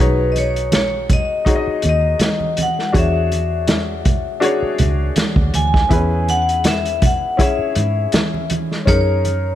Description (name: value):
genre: lush 1970s-style soul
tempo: 81 BPM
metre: 4/4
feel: swing 54% on 16ths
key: unclear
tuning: A4 = 440 Hz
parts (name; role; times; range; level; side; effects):
- vibraphone with hard mallets; melody; 0.0-9.6 s; B4 to G#5; -21 LUFS; left 2 dB; slapback echo
- clear baby grand piano; accompaniment; 0.0-9.6 s; B3 to D#5; -23 LUFS; left 3 dB; none
- vintage muted fingered electric bass; bass; 0.0-9.6 s; B1 to G#2; -19 LUFS; equal; none
- vintage drum kit; drums; 0.4-9.4 s; hi-hat, kick drum, snare drum; -18 LUFS; equal; none
- congas; percussion; 0.4-9.4 s; none; -25 LUFS; right 4 dB; none
room: light reverb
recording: none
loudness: -15 LUFS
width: side -12 dB against mid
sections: 0.0-9.6 A section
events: none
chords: 0.0 B69; 2.9 E13; 5.9 E69; 8.9 F#69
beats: 0.72 1.46 2.20 | 2.94 3.68 4.42 5.17 | 5.91 6.65 7.39 8.13 | 8.87